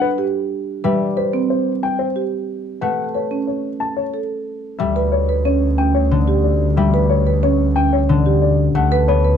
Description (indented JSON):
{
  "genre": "classical, minimalist pattern music",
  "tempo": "182 BPM",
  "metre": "6/4",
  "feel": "straight",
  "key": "unclear",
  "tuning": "A4 = 440 Hz",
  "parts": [
    { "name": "dark baby grand piano", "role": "melody", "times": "0.0-9.3 s", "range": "B4 to A5", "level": "-22 LUFS", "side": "left 6 dB", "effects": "none" },
    { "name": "concert harp", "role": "accompaniment", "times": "0.0-9.4 s", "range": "D3 to B3", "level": "-21 LUFS", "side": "left 4 dB", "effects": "none" },
    { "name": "marimba with medium mallets", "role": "arpeggios", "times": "0.2-9.4 s", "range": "C4 to B4", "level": "-21 LUFS", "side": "right 7 dB", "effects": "none" },
    { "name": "rich studio double bass section", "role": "bass", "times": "4.8-9.4 s", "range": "D2", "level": "-18 LUFS", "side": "right 1 dB", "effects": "none" }
  ],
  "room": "light reverb",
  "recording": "dark, warm production",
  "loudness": "-16 LUFS",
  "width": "side -8 dB against mid",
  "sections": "0.0-4.8 A section; 4.8-9.4 B section",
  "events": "none",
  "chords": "0.0 G; 0.8 Cmaj7(no3); 2.8 B5; 4.8 Em7/D (rootless); 8.8 D6"
}